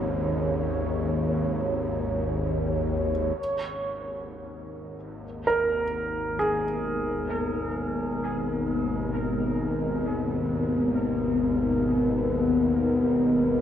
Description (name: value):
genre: dark ambient drone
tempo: free time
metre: none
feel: none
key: G# minor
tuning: A4 = 441 Hz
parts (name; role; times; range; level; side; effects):
- dark analog pad; sustained chords; 0.1-13.6 s; G#3 to F#5; -27 LUFS; left 2 dB; chorus, phaser
- warm concert grand piano; arpeggios; 0.0-13.6 s; G#2 to A#4; -31 LUFS; right 2 dB; dub echo
- bowed-like drone; drone; 0.0-13.6 s; G#1 to D#2; -29 LUFS; left 1 dB; built-in reverb
- bubbling stepped-filter texture; texture; 0.0-3.4 s; C#5; -32 LUFS; right 2 dB; chorus, built-in reverb
room: wet spring reverb, RT60 2.6 s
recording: echo-heavy mix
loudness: -24 LUFS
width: side -10 dB against mid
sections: 0.0-3.4 A section; 3.4-13.6 B section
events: fade-in on synth drone 3.4-13.6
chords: 0.0 D#m7/G#; 3.4 G#m7